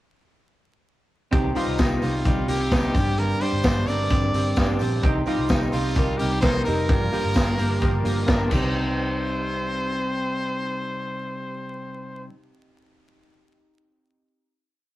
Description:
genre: jangly indie pop.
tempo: 129 BPM.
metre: 4/4.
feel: straight.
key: C minor.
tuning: A4 = 440 Hz.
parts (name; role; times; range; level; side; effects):
fingerpicked plugged-in steel-string acoustic guitar; accompaniment; 1.3-12.4 s; G2 to Eb4; -35 LUFS; right 2 dB; none.
warm analog keys; accompaniment; 1.3-15.0 s; Bb3 to Bb4; -28 LUFS; right 1 dB; chorus.
twelve-string electric guitar; arpeggios; 1.3-12.4 s; G2 to Eb4; -30 LUFS; left 1 dB; none.
vintage muted picked electric bass; bass; 1.3-12.3 s; F1 to C2; -27 LUFS; equal; none.
vintage drum kit; drums; 1.3-8.6 s; crash cymbal, hi-hat, kick drum, snare drum; -24 LUFS; equal; none.
tambourine; percussion; 1.6-8.9 s; none; -49 LUFS; left 5 dB; none.
brilliant trumpet; melody; 2.0-12.3 s; F4 to D5; -29 LUFS; equal; none.
room: moderate small room ambience, RT60 0.5 s.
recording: rough rehearsal-room recording, vinyl crackle.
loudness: -20 LUFS.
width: side -16 dB against mid.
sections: 1.3-8.7 chorus; 8.7-12.5 final hit.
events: none.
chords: 1.3 Cm; 2.9 Gsus4; 5.0 Cm; 6.9 Gm7; 8.5 Cm.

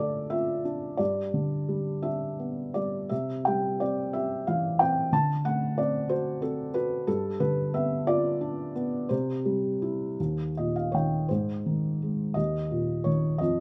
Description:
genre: classical, lyrical solo piano.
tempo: 53-62 BPM (dotted quarters).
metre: 6/8.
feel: rubato.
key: C major.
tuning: A4 = 440 Hz.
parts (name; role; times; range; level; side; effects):
felt-muted upright piano; solo; 0.0-13.6 s; Eb2 to A5; -28 LUFS; equal; none.
room: moderate studio reverb, RT60 0.8 s.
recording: none.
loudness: -28 LUFS.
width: mono.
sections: 0.0-11.3 A section; 11.3-13.6 B section.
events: felt piano fill 10.2-11.3.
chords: 0.0 Dm; 1.0 G; 3.1 C; 5.1 D7; 7.1 G7; 9.1 C; 10.2 Eb5; 11.3 Ab; 12.4 Eb5.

